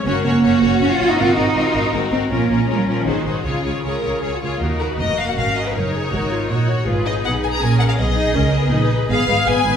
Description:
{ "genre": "quick classical-period movement for string orchestra", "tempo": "160 BPM", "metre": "3/4", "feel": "straight", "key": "Db major, Eb minor from 4.6 s", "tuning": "A4 = 440 Hz", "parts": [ { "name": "rich symphonic violin section", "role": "melody", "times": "0.0-9.8 s", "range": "Ab4 to Db5", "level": "-26 LUFS", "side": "left 5 dB", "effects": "none" }, { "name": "rich symphonic violin section", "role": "second line", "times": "0.0-9.8 s", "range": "Bb3 to Bb5", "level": "-22 LUFS", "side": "left 4 dB", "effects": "none" }, { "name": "rich symphonic viola section", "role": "accompaniment", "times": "0.0-9.8 s", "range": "Bb3 to Bb4", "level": "-24 LUFS", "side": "left 1 dB", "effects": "none" }, { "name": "warm symphonic cello section", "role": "bass", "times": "0.1-9.7 s", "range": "Eb2 to F4", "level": "-21 LUFS", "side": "right 3 dB", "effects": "none" }, { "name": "warm symphonic double bass section", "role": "bass", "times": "0.1-9.7 s", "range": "F1 to Eb2", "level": "-21 LUFS", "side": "right 2 dB", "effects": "none" } ], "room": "wet scoring stage reverb, RT60 1.7 s", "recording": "minimal, uncompressed stereo recording", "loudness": "-16 LUFS", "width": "side -8 dB against mid", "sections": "0.0-4.6 A section; 4.6-9.8 B section", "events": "none", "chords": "0.1 Gb; 1.2 Ab9; 2.3 Bbm; 3.1 Ab7; 3.5 Db; 4.6 Ebm; 5.7 Ebm/Gb; 6.9 Abm; 8.0 Abm/Cb; 9.1 Fdim/Ab", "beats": "| 0.06 0.43 0.81 | 1.18 1.55 1.93 | 2.31 2.69 3.06 | 3.45 3.84 4.23 | 4.61 4.99 5.37 | 5.74 6.12 6.50 | 6.87 7.24 7.61 | 7.98 8.35 8.72 | 9.09 9.46" }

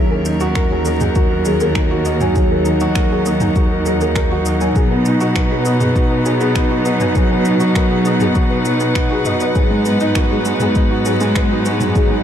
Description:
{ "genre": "piano and strings electronica", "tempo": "100 BPM", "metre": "4/4", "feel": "straight", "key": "unclear", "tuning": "A4 = 440 Hz", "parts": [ { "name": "warm string quartet", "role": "sustained chords", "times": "0.0-12.2 s", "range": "F#3 to F#5", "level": "-20 LUFS", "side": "right 1 dB", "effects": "sidechain pumping, shimmer reverb" }, { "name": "soft round pluck", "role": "arpeggios", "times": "0.0-12.2 s", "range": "D#4 to G#5", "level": "-25 LUFS", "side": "left 4 dB", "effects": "ensemble chorus, vintage 12-bit sampler grit, sidechain pumping, ping-pong delay, shimmer reverb" }, { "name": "felt-muted upright piano", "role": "riff", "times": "0.0-12.2 s", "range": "F#3 to B4", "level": "-18 LUFS", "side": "right 1 dB", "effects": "ping-pong delay, shimmer reverb" }, { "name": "bright symphonic cello section", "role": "bass", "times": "0.0-12.2 s", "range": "D#2 to B2", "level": "-21 LUFS", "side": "equal", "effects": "sidechain pumping" }, { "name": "deep house drum kit", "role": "drums", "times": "0.3-12.1 s", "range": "finger snaps, shaker, toms", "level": "-26 LUFS", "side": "right 1 dB", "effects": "none" }, { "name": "electronic kick drum", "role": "drums", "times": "0.6-12.1 s", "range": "none", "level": "-17 LUFS", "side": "equal", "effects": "none" } ], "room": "light reverb, small room ambience", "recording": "dark, warm production", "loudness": "-13 LUFS", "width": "side -9 dB against mid", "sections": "0.0-12.2 A section", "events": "none", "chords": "0.0 D#m; 4.8 B; 9.6 G#m7", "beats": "0.56 1.16 1.75 | 2.35 2.96 3.56 4.16 | 4.75 5.36 5.96 6.55 | 7.16 7.75 8.36 8.96 | 9.55 10.15 10.76 11.36 | 11.96" }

